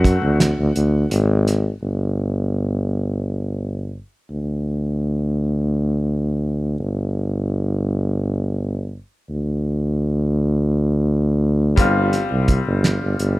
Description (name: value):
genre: progressive instrumental, band music in an uneven meter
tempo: 169 BPM (eighths)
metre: 7/8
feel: straight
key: unclear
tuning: A4 = 440 Hz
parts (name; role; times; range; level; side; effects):
- bright grand piano; accompaniment; 0.0-1.1, 11.8-13.4 s; G3 to F#5; -24 LUFS; left 3 dB; none
- breathy tuba; bass; 0.0-13.4 s; G1 to F#2; -19 LUFS; equal; none
- cloth-damped thuddy drum kit; drums; 0.0-1.6, 11.8-13.4 s; hi-hat, kick drum, snare drum; -18 LUFS; right 1 dB; none
room: little or no reverb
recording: none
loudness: -18 LUFS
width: side -18 dB against mid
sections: 0.0-1.8 A section; 1.8-11.8 B section; 11.8-13.4 C section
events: grand piano solo 0.0-1.8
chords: 0.0 D7; 1.8 N.C.; 11.8 G7sus4